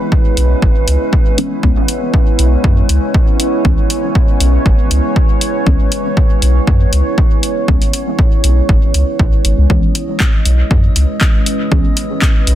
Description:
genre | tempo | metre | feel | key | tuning
dub techno | 119 BPM | 4/4 | swing 53% on 16ths | C# minor | A4 = 440 Hz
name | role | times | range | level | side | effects
deep dark ambient pad | sustained chords | 0.0-12.6 s | G#3 to C#5 | -19 LUFS | equal | chorus, built-in reverb, sidechain pumping
metallic inharmonic drone | texture | 0.0-12.6 s | B3 to D#5 | -25 LUFS | right 3 dB | chorus, built-in reverb, sidechain pumping
electronic kick drum | drums | 0.1-12.3 s | none | -12 LUFS | equal | none
round analog bass | bass | 0.4-12.6 s | G#1 to F#2 | -12 LUFS | equal | sidechain pumping
punchy analog drum machine | drums | 0.4-12.6 s | handclaps, hi-hat | -18 LUFS | left 1 dB | dub echo
deep mellow chord stab | stabs | 1.4-11.8 s | E3 to C#4 | -22 LUFS | left 1 dB | chorus, phaser, sidechain pumping, dub echo
room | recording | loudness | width
digital ambience | dense, heavily limited modern master | -10 LUFS | side -12 dB against mid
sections
0.0-9.7 A section; 9.7-12.6 A section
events
none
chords
0.0 C#m7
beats
0.12 0.62 1.13 | 1.63 2.14 2.64 3.15 | 3.65 4.15 4.66 5.16 | 5.67 6.17 6.67 7.18 | 7.68 8.19 8.69 9.20 | 9.70 10.20 10.71 11.21 | 11.72 12.22

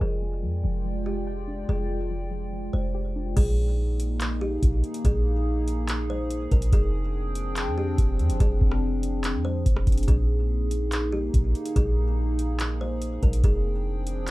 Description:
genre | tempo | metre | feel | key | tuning
hip hop, atmospheric cloud-rap | 143 BPM | 4/4 | half-time | unclear | A4 = 440 Hz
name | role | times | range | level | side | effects
kalimba | melody | 0.0-14.3 s | G4 to C5 | -34 LUFS | equal | low-pass filter, digital delay
dark analog pad | sustained chords | 0.0-14.3 s | F3 to G5 | -32 LUFS | equal | chorus, phaser, sidechain pumping, low-pass filter
soft round pluck | arpeggios | 0.0-3.4 s | F3 to G5 | -39 LUFS | left 4 dB | chorus, low-pass filter, digital delay
clean 808-style bass | bass | 0.0-14.3 s | F1 to F2 | -25 LUFS | equal | none
booming analog drum machine | drums | 3.4-14.3 s | crash cymbal, handclaps, hi-hat, kick drum, rim click | -24 LUFS | equal | none
room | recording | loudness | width
light reverb | dark, warm production | -23 LUFS | side -19 dB against mid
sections
0.0-3.4 A section; 3.4-14.3 B section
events
filter sweep 0.0-3.4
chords
0.0 Fm69; 3.4 Bb7sus4; 6.7 Fm69; 10.1 Bb7sus4; 13.4 Fm69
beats
| 0.01 0.43 0.85 1.27 | 1.69 2.11 2.53 2.95 | 3.37 3.79 4.21 4.63 | 5.04 5.46 5.88 6.30 | 6.72 7.14 7.56 7.98 | 8.40 8.82 9.24 9.66 | 10.08 10.50 10.92 11.34 | 11.76 12.18 12.60 13.02 | 13.44 13.86 14.28

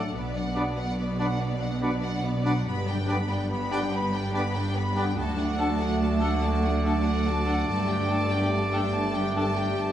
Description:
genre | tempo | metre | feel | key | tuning
cinematic, heroic adventure film score | 95 BPM (dotted quarters) | 12/8 | straight | unclear | A4 = 440 Hz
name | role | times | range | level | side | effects
rich symphonic violin section | melody | 0.0-9.9 s | D5 to B5 | -34 LUFS | left 2 dB | none
mellow silver concert flute | second line | 0.0-9.5 s | F#5 to G5 | -39 LUFS | left 1 dB | none
rich symphonic violin section | second line | 0.0-9.9 s | F#4 to D5 | -40 LUFS | equal | none
rich symphonic viola section | accompaniment | 0.0-9.9 s | A3 to F#4 | -36 LUFS | equal | none
concert harp | arpeggios | 0.0-9.9 s | G2 to D6 | -36 LUFS | left 6 dB | none
rich studio double bass section | bass | 0.0-9.9 s | G1 to D2 | -30 LUFS | right 2 dB | none
warm symphonic cello section | bass | 0.0-9.9 s | D2 to B2 | -30 LUFS | right 1 dB | none
clear trumpet | stabs | 0.5-9.9 s | D5 | -34 LUFS | right 2 dB | none
clear clarinet | second line | 0.6-9.4 s | D4 | -36 LUFS | left 3 dB | none
warm oboe | second line | 0.6-9.4 s | A4 to B4 | -40 LUFS | left 1 dB | none
clear trombone section | sustained chords | 0.6-9.9 s | D3 to B3 | -37 LUFS | right 4 dB | none
warm French horn section | sustained chords | 0.6-9.9 s | D4 to G4 | -36 LUFS | left 4 dB | none
room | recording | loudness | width
wet scoring stage reverb, RT60 2.0 s | small room ambience | -24 LUFS | side -11 dB against mid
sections
0.0-9.9 A section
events
none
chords
0.1 Bm; 2.7 G; 5.2 D; 7.7 Gsus2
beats
| 0.14 0.77 1.40 2.03 | 2.66 3.29 3.92 4.55 | 5.18 5.80 6.43 7.06 | 7.69 8.31 8.94 9.57

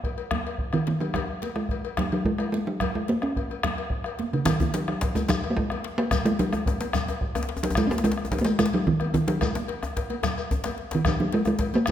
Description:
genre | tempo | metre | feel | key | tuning
west african traditional, West African drum ensemble | 145 BPM (dotted quarters) | 12/8 | straight | F# major pentatonic | A4 = 440 Hz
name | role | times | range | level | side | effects
talking drum | melody | 0.0-11.9 s | C#3 to C#4 | -24 LUFS | right 1 dB | none
bombo | percussion | 0.0-11.9 s | none | -30 LUFS | left 1 dB | none
congas | percussion | 0.0-11.9 s | none | -35 LUFS | right 6 dB | none
cowbell | percussion | 0.0-11.9 s | none | -36 LUFS | left 8 dB | none
djembe | percussion | 0.3-11.9 s | none | -35 LUFS | left 5 dB | none
djembe | percussion | 4.5-11.7 s | none | -32 LUFS | left 3 dB | none
shekere | percussion | 4.5-11.9 s | none | -39 LUFS | left 3 dB | none
room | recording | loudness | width
wet recital hall reverb, RT60 1.5 s | none | -23 LUFS | side -10 dB against mid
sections
0.0-4.5 A section; 4.5-11.9 B section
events
drum fill 10.5-11.1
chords
none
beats
0.31 0.73 | 1.15 1.56 1.98 2.39 | 2.81 3.22 3.64 4.05 | 4.47 4.88 5.29 5.71 | 6.12 6.53 6.95 7.36 | 7.77 8.18 8.59 9.00 | 9.41 9.83 10.24 10.65 | 11.05 11.46 11.87

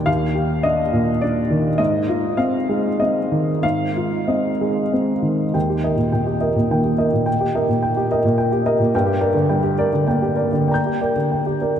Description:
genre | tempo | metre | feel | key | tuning
neoclassical minimalist piano | 90-109 BPM | 3/4 | rubato | Eb major | A4 = 440 Hz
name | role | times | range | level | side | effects
warm upright piano | solo | 0.0-11.8 s | Eb2 to G6 | -17 LUFS | equal | analog delay
room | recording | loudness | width
wet huge ambient reverb, RT60 6.4 s | dreamy mix soaked in reverb | -17 LUFS | side -9 dB against mid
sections
0.0-5.5 A section; 5.5-11.8 B section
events
none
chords
0.0 Ebmaj7; 1.8 Ab6; 5.5 Eb; 8.9 Gm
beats
| 0.07 0.65 1.22 | 1.79 2.38 2.99 | 3.63 4.29 4.93 | 5.55 6.13 6.70 | 7.27 7.82 8.38 | 8.93 9.49 10.08 | 10.70 11.32

